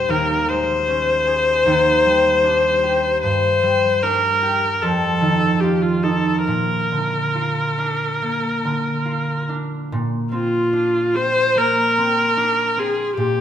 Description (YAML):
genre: classical, impressionist duo for viola and harp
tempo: 68-77 BPM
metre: 4/4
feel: rubato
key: Bb mixolydian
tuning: A4 = 439 Hz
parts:
  - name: clear viola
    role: melody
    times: 0.0-13.4 s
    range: F4 to C5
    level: -17 LUFS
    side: left 1 dB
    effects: none
  - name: concert harp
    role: accompaniment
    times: 0.0-13.4 s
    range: Eb2 to Ab4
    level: -22 LUFS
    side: right 1 dB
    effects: none
room: wet recital hall reverb, RT60 1.4 s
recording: minimal, uncompressed stereo recording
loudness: -16 LUFS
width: side -10 dB against mid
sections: 0.0-9.9 A section; 9.9-13.4 B section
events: none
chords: 0.1 Bbm11/Eb; 1.7 Eb6; 3.2 Gm; 4.8 F7; 6.5 Bb; 9.9 Bbadd9